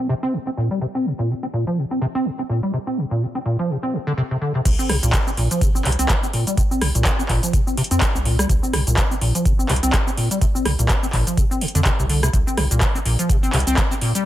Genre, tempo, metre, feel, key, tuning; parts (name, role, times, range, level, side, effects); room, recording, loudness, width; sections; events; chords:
acid house; 125 BPM; 4/4; swing 57% on 16ths; A4 = 440 Hz
deep acid bass; riff; 0.0-14.2 s; Bb2 to C4; -21 LUFS; equal; tube saturation, lush chorus, sidechain pumping, ping-pong delay
round analog bass; bass; 4.7-13.8 s; G1 to F2; -22 LUFS; equal; sidechain pumping
booming analog drum machine; drums; 4.7-14.2 s; crash cymbal, handclaps, hi-hat, rim click, shaker; -23 LUFS; equal; overdrive, low-pass filter on hats, low-pass filter on snare, low-pass filter on toms, low-pass filter on cymbals, low-pass filter on perc, low-pass filter on room
electronic kick drum; drums; 4.7-13.9 s; -20 LUFS; equal; overdrive
little or no reverb; -18 LUFS; side -13 dB against mid
0.0-4.7 A section; 4.7-14.3 B section
drop 4.7-14.3
0.0 C5; 4.7 C7(no3)